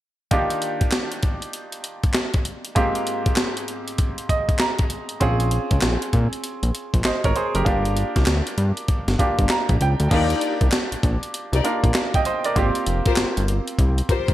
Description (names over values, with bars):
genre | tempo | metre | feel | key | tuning
R&B, new jack swing | 98 BPM | 4/4 | swing 63% on 16ths | Eb major | A4 = 441 Hz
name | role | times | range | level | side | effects
bright grand piano | accompaniment | 0.3-14.3 s | Ab2 to Bb5 | -25 LUFS | right 2 dB | none
breakbeat sampler-style drum kit | drums | 0.3-14.3 s | crash cymbal, handclaps, hi-hat, kick drum, snare drum | -22 LUFS | equal | gated reverb
fat analog bass | bass | 5.2-14.3 s | F1 to Bb2 | -21 LUFS | equal | none
warm studio string section | stabs | 10.1-14.3 s | Eb4 to D5 | -26 LUFS | left 5 dB | none
room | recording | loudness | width
light reverb | bright 1980s-style digital production | -19 LUFS | side -14 dB against mid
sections
0.3-10.1 A section; 10.1-14.3 B section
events
grand piano fill 4.0-5.2, 9.2-10.1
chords
0.3 Ebmaj7; 2.8 Abmaj13; 5.2 Bbm9; 7.7 Gm7; 10.1 Ebmaj7; 12.6 Abmaj13